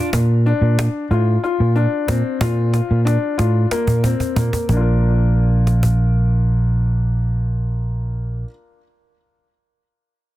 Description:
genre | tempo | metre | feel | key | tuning
progressive instrumental, band music in an uneven meter | 184 BPM (eighths) | 7/8 | straight | Bb major | A4 = 440 Hz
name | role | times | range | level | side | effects
warm grand piano | arpeggios | 0.0-8.5 s | Bb3 to Bb4 | -23 LUFS | left 5 dB | ping-pong delay
fingered electric bass | bass | 0.1-8.4 s | Bb1 to Bb2 | -16 LUFS | right 1 dB | none
cajon | drums | 0.1-6.0 s | none | -24 LUFS | equal | none
room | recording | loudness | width
little or no reverb | dense, heavily limited modern master | -15 LUFS | side -15 dB against mid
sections
0.1-4.7 A section; 4.7-7.0 B section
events
drum fill 2.7-4.7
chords
0.1 Bb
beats
| 0.12 0.44 0.77 1.09 1.42 1.75 2.07 | 2.40 2.72 3.05 3.38 3.70 4.03 4.36 | 4.68 5.01 5.33 5.66 5.99 6.31 6.64

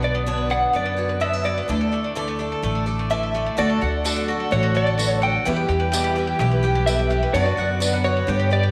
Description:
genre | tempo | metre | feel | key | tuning
indie folk with a building arrangement | 127 BPM | 4/4 | straight | D major | A4 = 440 Hz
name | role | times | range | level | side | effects
electric guitar through a small old amp | melody | 0.0-8.7 s | C#5 to G5 | -26 LUFS | equal | tremolo
fingerpicked steel-string acoustic guitar | accompaniment | 0.0-5.5 s | D2 to A4 | -35 LUFS | equal | none
picked swing-style acoustic guitar | accompaniment | 0.0-8.7 s | E2 to D5 | -31 LUFS | equal | none
bowl-back mandolin | arpeggios | 0.0-8.7 s | A3 to G5 | -30 LUFS | equal | none
upright bass | bass | 0.0-8.7 s | A1 to G2 | -26 LUFS | equal | none
warm upright piano | accompaniment | 3.6-8.7 s | F#1 to E5 | -34 LUFS | equal | none
dark chamber string section | sustained chords | 3.6-8.7 s | D3 to G4 | -33 LUFS | equal | none
tambourine | percussion | 4.1-7.9 s | none | -31 LUFS | equal | none
room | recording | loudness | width
moderate echo chamber reverb, RT60 2.5 s | none | -21 LUFS | mono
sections
0.0-3.6 A section; 3.6-8.7 B section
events
none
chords
0.0 Bmadd9; 1.7 Dsus2; 3.6 D; 5.5 Em; 7.3 Bm/F#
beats
0.26 0.74 1.21 | 1.69 2.16 2.63 3.11 | 3.58 4.05 4.52 4.99 | 5.46 5.93 6.40 6.87 | 7.34 7.81 8.28

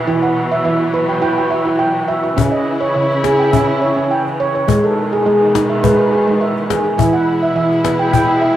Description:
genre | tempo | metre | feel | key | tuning
world meditative, meditative tuned percussion | 104 BPM | 4/4 | straight | unclear | A4 = 440 Hz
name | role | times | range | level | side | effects
warm symphonic string section | sustained chords | 0.0-8.6 s | B2 to E4 | -19 LUFS | left 2 dB | cassette tape
handpan | arpeggios | 0.0-8.6 s | C#3 to G5 | -14 LUFS | right 2 dB | cassette tape
cajon | percussion | 2.4-8.3 s | none | -17 LUFS | left 6 dB | none
room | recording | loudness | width
wet studio reverb, RT60 0.6 s | home recording on cassette | -13 LUFS | side -12 dB against mid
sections
0.0-8.6 A section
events
none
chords
0.0 E5; 2.4 C#m; 4.7 G#m; 7.0 E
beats
| 0.07 0.65 1.23 1.80 | 2.38 2.95 3.53 4.10 | 4.68 5.25 5.83 6.41 | 6.98 7.56 8.13

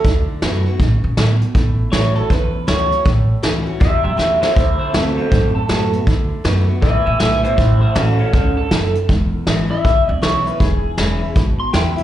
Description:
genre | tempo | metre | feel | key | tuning
rockabilly | 159 BPM | 4/4 | swing 64% on 8ths | A major | A4 = 442 Hz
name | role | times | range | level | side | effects
electric guitar through a small old amp | melody | 0.0-12.0 s | C4 to C6 | -19 LUFS | right 1 dB | phaser, slapback echo, tape echo
picked steel-string acoustic guitar | accompaniment | 0.0-12.0 s | E2 to F#4 | -23 LUFS | left 2 dB | slapback echo
upright bass | bass | 0.0-12.0 s | E1 to B2 | -18 LUFS | equal | none
vintage brush drum kit | drums | 0.0-12.0 s | hi-hat, kick drum, snare drum | -18 LUFS | equal | none
room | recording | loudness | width
small room ambience | live gig heard through the venue's PA, club reverb | -14 LUFS | side -12 dB against mid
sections
0.0-12.0 A section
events
drum fill 4.2-4.6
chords
0.0 D6; 1.6 A6; 4.6 D6; 7.6 A6; 9.1 E6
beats
| 0.04 0.42 0.80 1.17 | 1.55 1.93 2.30 2.68 | 3.06 3.43 3.81 4.19 | 4.57 4.94 5.32 5.70 | 6.07 6.45 6.83 7.21 | 7.58 7.96 8.34 8.71 | 9.09 9.47 9.85 10.22 | 10.60 10.98 11.36 11.73

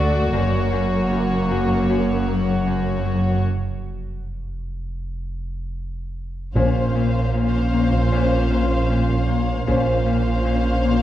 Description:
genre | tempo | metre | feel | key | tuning
cinematic, suspense film score | 77 BPM | 4/4 | straight | Bb minor from 6.6 s | A4 = 441 Hz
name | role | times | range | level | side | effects
warm studio violin section | melody | 0.0-11.0 s | C#5 to F5 | -30 LUFS | left 4 dB | none
warm symphonic violin section | second line | 0.0-11.0 s | F#4 to C5 | -28 LUFS | left 2 dB | none
dark symphonic viola section | accompaniment | 0.0-11.0 s | A3 to Db4 | -28 LUFS | right 2 dB | none
Celtic harp | riff | 0.0-11.0 s | F#2 to D4 | -25 LUFS | left 6 dB | none
dark chamber cello section | bass | 0.0-11.0 s | D2 to Bb2 | -24 LUFS | right 2 dB | none
dark symphonic double bass section | bass | 0.0-11.0 s | F#1 to D2 | -27 LUFS | right 3 dB | none
warm sub bass | drone | 0.0-11.0 s | E#1 to D2 | -27 LUFS | equal | none
mellow French horn section | sustained chords | 6.6-10.0 s | Db4 to C5 | -26 LUFS | left 1 dB | none
taiko ensemble | drums | 6.6-10.4 s | none | -28 LUFS | right 1 dB | none
timpani | percussion | 6.6-7.7 s | Bb2 | -26 LUFS | right 1 dB | none
room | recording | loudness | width
wet concert hall reverb, RT60 1.9 s | worn, warbling old tape, cassette tape, warbly pitch drift | -18 LUFS | side -12 dB against mid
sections
0.0-6.6 A section; 6.6-11.0 B section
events
break 3.4-6.6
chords
0.3 F#; 3.4 N.C.; 6.6 Bbmadd9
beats
| 0.33 1.11 1.89 2.66 | 3.44 4.22 5.00 5.78 | 6.56 7.34 8.12 8.90 | 9.68 10.46

